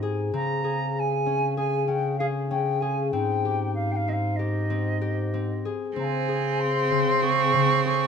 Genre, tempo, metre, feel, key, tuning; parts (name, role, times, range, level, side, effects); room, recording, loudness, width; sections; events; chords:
contemporary instrumental, chamber music in an uneven meter; 192 BPM (eighths); 9/8; straight; A4 = 439 Hz
concert harp; arpeggios; 0.0-8.1 s; Db3 to Ab4; -29 LUFS; left 5 dB
breathy bass clarinet; bass; 0.0-8.1 s; Ab2 to Db3; -28 LUFS; equal
wooden flute; melody; 0.3-8.1 s; Eb5 to Db6; -27 LUFS; right 1 dB
bright cello; second line; 6.0-8.1 s; C4; -25 LUFS; right 6 dB
light reverb; close, detailed microphones; -23 LUFS; side -6 dB against mid
0.0-8.1 A section
0.3 Db5; 3.1 Abmaj7; 6.0 Db5